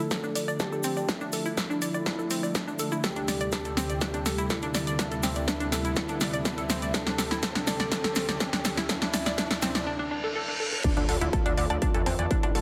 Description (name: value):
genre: melodic techno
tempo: 123 BPM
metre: 4/4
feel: straight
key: unclear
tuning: A4 = 441 Hz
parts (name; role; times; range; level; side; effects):
- expressive portamento lead; melody; 0.0-12.6 s; E4 to A4; -38 LUFS; equal; subtle chorus, sidechain pumping, dub echo
- lush unison pad; sustained chords; 0.0-12.6 s; D2 to A4; -37 LUFS; equal; chorus, sidechain pumping
- analog pluck; arpeggios; 0.0-12.6 s; C4 to D6; -35 LUFS; equal; chorus, sidechain pumping, dub echo
- tube shaker; percussion; 0.0-9.8 s; none; -43 LUFS; equal; none
- riser, reverse cymbal and impact; sound effects; 0.5-12.6 s; none; -41 LUFS; equal; none
- electronic kick drum; drums; 0.1-12.4 s; none; -34 LUFS; equal; distortion, high-pass filter on kick, high-pass filter on room
- punchy analog drum machine; drums; 0.1-12.6 s; crash cymbal, hi-hat, snare drum, woodblock; -33 LUFS; equal; sidechain pumping on hats, sidechain pumping on cymbals, sidechain pumping on perc
- gritty driven synth bass; bass; 11.0-12.6 s; D1 to E2; -32 LUFS; equal; sidechain pumping
room: moderate lush hall reverb, RT60 2.1 s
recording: heavily compressed radio sound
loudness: -28 LUFS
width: mono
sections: 0.0-10.8 A section; 10.8-12.6 B section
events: build-up 0.0-10.8; drum fill 0.0-9.9; filter sweep on analog synth pad 0.0-10.8; reverse cymbal 9.9-10.8; drop 10.8-12.6; impact 10.8-12.6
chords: 0.0 Dm; 3.0 C6/D; 10.8 Dm